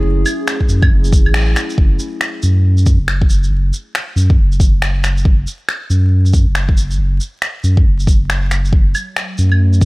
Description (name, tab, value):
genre	future garage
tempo	138 BPM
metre	4/4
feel	swing 62% on 16ths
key	F# minor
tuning	A4 = 440 Hz
part	warbly tape-like pad	sustained chords	0.0-1.8, 9.0-9.8 s	F#3 to G#4	-24 LUFS	equal	chorus, built-in reverb, sidechain pumping
part	warm sub bass	bass	0.0-9.8 s	F#1 to F#2	-13 LUFS	equal	sidechain pumping
part	electronic shaker, claves and finger snaps	drums	0.3-9.8 s	none	-20 LUFS	equal	none
part	electronic kick drum	drums	0.6-9.8 s	none	-12 LUFS	equal	none
room	digital ambience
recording	vinyl crackle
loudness	-12 LUFS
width	side -22 dB against mid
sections	0.0-1.8 A section; 1.8-9.8 B section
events	break 1.3-1.8; band accent 1.3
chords	0.0 F#m7; 1.8 N.C.